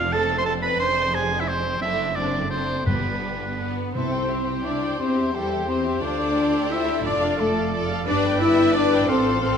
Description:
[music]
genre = classical, dramatic, fast romantic movement for symphony orchestra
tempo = 175 BPM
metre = 3/4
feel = rubato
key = C major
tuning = A4 = 440 Hz
[part]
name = clear symphonic violin section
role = melody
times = 0.0-9.6 s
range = D4 to B4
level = -33 LUFS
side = left 5 dB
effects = none
[part]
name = bright oboe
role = second line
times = 0.0-9.6 s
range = B4 to C6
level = -28 LUFS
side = right 2 dB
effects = none
[part]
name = rich symphonic violin section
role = second line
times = 0.0-9.6 s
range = G3 to E5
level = -32 LUFS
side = left 3 dB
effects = none
[part]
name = rich symphonic viola section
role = accompaniment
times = 0.0-9.6 s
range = B3 to G5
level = -30 LUFS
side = right 3 dB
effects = none
[part]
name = rich symphonic double bass section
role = bass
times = 0.0-9.6 s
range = F1 to E2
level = -30 LUFS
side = right 4 dB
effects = none
[part]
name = warm studio cello section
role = bass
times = 0.0-9.6 s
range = F2 to E4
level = -29 LUFS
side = right 4 dB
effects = none
[part]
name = timpani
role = percussion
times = 2.9-4.4 s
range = G2 to C3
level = -30 LUFS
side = equal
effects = none
[part]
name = silver concert flute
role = second line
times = 3.6-9.6 s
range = G5 to E6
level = -30 LUFS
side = left 3 dB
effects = none
[part]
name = mellow French horn section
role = sustained chords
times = 3.6-9.6 s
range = G3 to E4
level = -24 LUFS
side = left 4 dB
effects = none
[part]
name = mellow clarinet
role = second line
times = 4.0-9.6 s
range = E4 to B4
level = -32 LUFS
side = left 3 dB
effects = none
[sound]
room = moderate scoring stage reverb, RT60 2.0 s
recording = none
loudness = -20 LUFS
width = side -7 dB against mid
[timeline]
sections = 0.0-4.0 A section; 4.0-9.6 B section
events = none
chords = 0.0 Dm7/F; 0.8 Dm7b5/F; 1.8 D7/F#; 2.9 G; 4.0 C; 5.0 C/E; 6.0 Dm7; 7.0 Dm/F; 8.1 G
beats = 0.12 0.46 | 0.80 1.14 1.48 | 1.82 2.16 2.51 | 2.87 3.23 3.60 | 3.95 4.30 4.64 | 4.99 5.34 5.68 | 6.02 6.37 6.71 | 7.05 7.39 7.73 | 8.07 8.41 8.75 | 9.09 9.43

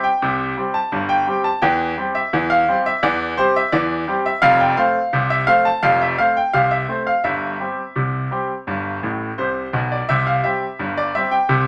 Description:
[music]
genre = ragtime piano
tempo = 85 BPM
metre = 2/4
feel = straight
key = C major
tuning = A4 = 440 Hz
[part]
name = bright grand piano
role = solo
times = 0.0-11.7 s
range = F1 to A5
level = -19 LUFS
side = equal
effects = none
[sound]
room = moderate studio ambience, RT60 0.4 s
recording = none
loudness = -19 LUFS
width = mono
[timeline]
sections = 0.0-11.7 A section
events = grand piano fill 9.0-10.1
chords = 0.0 C5; 1.6 C/E; 4.4 F; 7.2 C/G; 8.7 G; 10.1 C5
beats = | 0.21 0.92 | 1.62 2.33 | 3.03 3.73 | 4.43 5.13 | 5.83 6.54 | 7.25 7.96 | 8.67 9.38 | 10.09 10.79 | 11.50

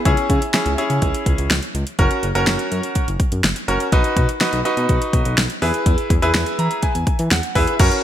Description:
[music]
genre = synth-pop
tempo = 124 BPM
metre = 4/4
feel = straight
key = unclear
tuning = A4 = 441 Hz
[part]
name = bright grand piano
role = accompaniment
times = 0.1-8.0 s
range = C#4 to A#5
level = -20 LUFS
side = equal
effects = none
[part]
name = smooth synth bass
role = bass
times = 0.1-7.9 s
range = F#1 to E3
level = -22 LUFS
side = equal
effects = none
[part]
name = deep house drum kit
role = drums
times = 0.1-8.0 s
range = crash cymbal, hi-hat, kick drum, snare drum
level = -19 LUFS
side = equal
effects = none
[sound]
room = moderate lush hall reverb, RT60 1.7 s, digital ambience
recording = bright 1980s-style digital production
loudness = -16 LUFS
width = side -11 dB against mid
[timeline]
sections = 0.0-7.8 A section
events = grand piano fill 6.3-7.8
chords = 0.1 C#m; 2.0 F#; 3.9 B; 5.6 E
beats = | 0.06 0.54 1.02 1.51 | 1.99 2.47 2.96 3.44 | 3.93 4.41 4.89 5.38 | 5.86 6.34 6.83 7.31 | 7.80

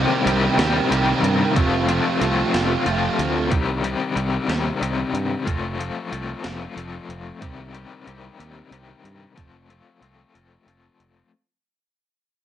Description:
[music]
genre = indie rock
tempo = 62 BPM (dotted quarters)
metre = 6/8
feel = straight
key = unclear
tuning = A4 = 440 Hz
[part]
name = crunchy overdriven guitar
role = riff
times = 0.0-11.3 s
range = C3 to G4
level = -23 LUFS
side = left 5 dB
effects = tremolo
[part]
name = fuzz guitar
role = riff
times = 0.0-3.5 s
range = F2 to G4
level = -23 LUFS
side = right 8 dB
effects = distortion, ensemble chorus, analog delay
[part]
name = overdriven fingered electric bass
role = bass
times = 0.0-11.2 s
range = F1 to G2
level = -26 LUFS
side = right 2 dB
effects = none
[part]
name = gated 80s digital drum machine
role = drums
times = 0.3-11.1 s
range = hi-hat, kick drum, snare drum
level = -25 LUFS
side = right 2 dB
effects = gated reverb, gated reverb snare, cassette tape
[sound]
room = moderate studio reverb, RT60 0.6 s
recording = home recording on cassette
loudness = -19 LUFS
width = side -10 dB against mid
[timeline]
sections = 0.0-11.3 A section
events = fade-out 0.0-11.3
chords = 0.0 Cm; 1.6 F; 3.5 Cm; 5.5 F; 7.4 Cm; 9.4 F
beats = 0.58 | 1.56 2.53 | 3.51 4.49 | 5.46 6.44 | 7.42 8.39 | 9.37 10.34

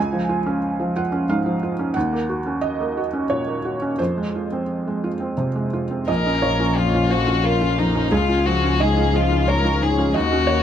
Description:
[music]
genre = neoclassical piano and strings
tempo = 89 BPM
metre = 3/4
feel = rubato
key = Db major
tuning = A4 = 441 Hz
[part]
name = felt-muted upright piano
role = accompaniment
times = 0.0-10.6 s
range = Bb1 to Ab5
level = -20 LUFS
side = right 2 dB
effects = none
[part]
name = rich violin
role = melody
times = 6.1-10.6 s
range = Eb4 to Bb4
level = -22 LUFS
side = left 6 dB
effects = none
[part]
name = rich chamber string section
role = sustained chords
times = 6.1-10.6 s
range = Ab3 to F5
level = -32 LUFS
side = equal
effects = none
[part]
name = warm double bass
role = bass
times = 6.1-10.6 s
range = Bb1 to Eb2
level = -22 LUFS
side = left 2 dB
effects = none
[sound]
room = little or no reverb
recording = none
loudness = -18 LUFS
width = side -9 dB against mid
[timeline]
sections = 0.0-6.1 A section; 6.1-10.6 A section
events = none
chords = 0.0 Db; 2.0 Ebm7; 4.0 Fm; 6.1 Bbm; 8.1 Db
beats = 0.63 1.30 | 1.95 2.62 3.29 | 3.99 4.69 5.38 | 6.08 6.77 7.44 | 8.12 8.81 9.48 | 10.15

